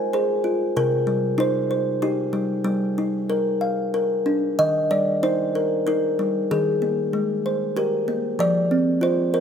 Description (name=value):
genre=children's music, lullaby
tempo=95 BPM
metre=3/4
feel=straight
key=Eb major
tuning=A4 = 440 Hz
part: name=kalimba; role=solo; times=0.0-9.4 s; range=C3 to Ab5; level=-20 LUFS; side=equal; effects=none
room=light reverb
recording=none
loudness=-20 LUFS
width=side -7 dB against mid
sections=0.0-4.6 A section; 4.6-9.4 B section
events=none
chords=0.0 Fm/Ab; 0.8 Cm; 2.7 Eb; 3.3 Bb; 4.6 Eb; 6.5 Abadd9/Eb; 8.4 F5